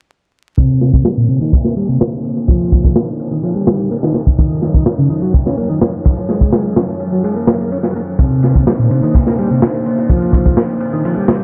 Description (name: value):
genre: breakbeat, breaks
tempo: 126 BPM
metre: 4/4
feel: straight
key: C minor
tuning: A4 = 441 Hz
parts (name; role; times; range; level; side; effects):
- dark analog pad; sustained chords; 0.6-11.4 s; Gb3 to Db5; -23 LUFS; equal; chorus, sidechain pumping
- tonewheel organ; riff; 0.6-11.4 s; Bb2 to Db4; -18 LUFS; equal; chorus vibrato, slow rotary speaker, tube saturation, vintage 12-bit sampler grit, low-pass filter, tape echo
- crunchy breakbeat drum kit; drums; 0.6-11.4 s; hi-hat, kick drum, ride cymbal, snare drum; -17 LUFS; equal; low-pass filter on kick, low-pass filter on cymbals, low-pass filter on hats, low-pass filter on snare, low-pass filter on room
room: moderate echo chamber reverb, RT60 1.5 s, studio ambience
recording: echo-heavy mix, vinyl crackle, low-pass filter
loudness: -14 LUFS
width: mono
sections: 0.6-11.4 A section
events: filter sweep on drum 0.6-11.4; filter sweep on tonewheel organ 0.6-11.4; filter sweep 0.6-11.4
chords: 0.6 Cm9; 4.1 Ebm9; 8.2 Cm9